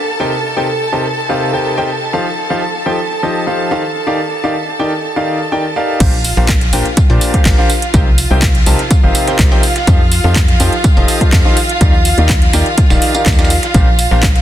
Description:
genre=piano house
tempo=124 BPM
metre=4/4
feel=straight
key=Bb major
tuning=A4 = 441 Hz
part: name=rich chamber violin section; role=sustained chords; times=0.0-14.4 s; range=F4 to A5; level=-19 LUFS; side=right 2 dB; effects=sidechain pumping
part: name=bright grand piano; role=riff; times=0.2-14.2 s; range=Bb2 to A5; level=-17 LUFS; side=equal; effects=sidechain pumping, ping-pong delay
part: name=organ-like FM bass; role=bass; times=6.0-14.4 s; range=Eb1 to Bb2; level=-14 LUFS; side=equal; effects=tube saturation, sidechain pumping
part: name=dusty soul sampler-style drum kit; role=drums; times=6.0-14.4 s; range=hi-hat, snare drum, tambourine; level=-25 LUFS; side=right 2 dB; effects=none
part: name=electronic kick drum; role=drums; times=6.0-14.3 s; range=none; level=-11 LUFS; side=equal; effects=overdrive
part: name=house drum kit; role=drums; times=6.0-14.4 s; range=crash cymbal, handclaps, hi-hat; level=-19 LUFS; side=equal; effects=overdrive
room=light reverb, digital ambience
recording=dense, heavily limited modern master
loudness=-10 LUFS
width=side -12 dB against mid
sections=0.0-6.0 A section; 6.0-14.4 B section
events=drop 6.0-14.4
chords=0.0 Cm7; 2.1 F9; 3.8 Ebmaj9; 6.0 Bb69; 7.7 Cm7; 9.9 F9; 11.6 Ebmaj9; 13.7 Bb69

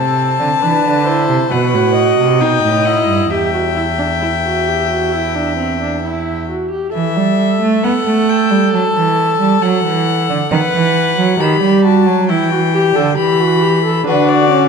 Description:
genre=classical, baroque-style fugue for string quartet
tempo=67 BPM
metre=4/4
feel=straight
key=E minor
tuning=A4 = 440 Hz
part: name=rich violin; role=melody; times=0.0-14.7 s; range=B4 to B5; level=-18 LUFS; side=left 9 dB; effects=none
part: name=dark violin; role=second line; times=0.0-6.5, 14.1-14.7 s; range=F#4 to E5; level=-18 LUFS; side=left 5 dB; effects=none
part: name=warm viola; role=accompaniment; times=0.0-14.7 s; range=C4 to B4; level=-17 LUFS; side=right 2 dB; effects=none
part: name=rich cello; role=bass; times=0.0-14.7 s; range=E2 to B3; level=-16 LUFS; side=right 4 dB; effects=none
room=moderate scoring stage reverb, RT60 1.6 s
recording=dark, warm production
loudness=-12 LUFS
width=side -5 dB against mid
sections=0.0-6.9 A section; 6.9-14.7 B section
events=none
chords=0.0 Amadd11; 1.5 B; 3.3 Em; 8.7 Dadd9 (rootless); 10.5 B7; 12.3 Em; 14.1 Bm/D

